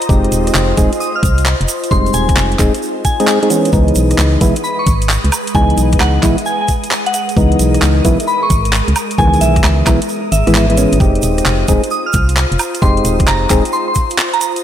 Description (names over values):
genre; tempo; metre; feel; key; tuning
UK garage, two-step garage; 132 BPM; 4/4; swing 67% on 16ths; F minor; A4 = 440 Hz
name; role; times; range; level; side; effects
soft string machine; sustained chords; 0.0-14.6 s; Ab3 to Eb6; -24 LUFS; equal; ensemble chorus, sidechain pumping
garage drum kit; drums; 0.0-14.6 s; handclaps, hi-hat, rim click, woodblock; -19 LUFS; right 1 dB; none
egg shaker; percussion; 0.0-14.6 s; none; -26 LUFS; right 7 dB; none
percussive organ stab; stabs; 0.1-13.6 s; Eb3 to Ab4; -16 LUFS; equal; chorus, ping-pong delay
organ-like FM bass; bass; 0.1-13.6 s; Eb1 to Db2; -15 LUFS; equal; none
electronic kick drum; drums; 0.1-14.1 s; none; -15 LUFS; equal; none
soft synth bell; melody; 1.0-14.5 s; Fb5 to F6; -19 LUFS; equal; chorus, phaser, ping-pong delay
room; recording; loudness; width
moderate lush hall reverb, RT60 2.1 s; dreamy mix soaked in reverb; -11 LUFS; side -10 dB against mid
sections
0.0-14.6 A section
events
kick drops out 10.1-11.0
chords
0.0 Fm9; 3.5 Dbm9; 11.0 Fm9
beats
| 0.09 0.55 1.00 1.46 | 1.91 2.37 2.82 3.27 | 3.73 4.18 4.64 5.09 | 5.55 6.00 6.46 6.91 | 7.37 7.82 8.28 8.73 | 9.18 9.64 10.09 10.55 | 11.00 11.46 11.91 12.37 | 12.82 13.28 13.73 14.18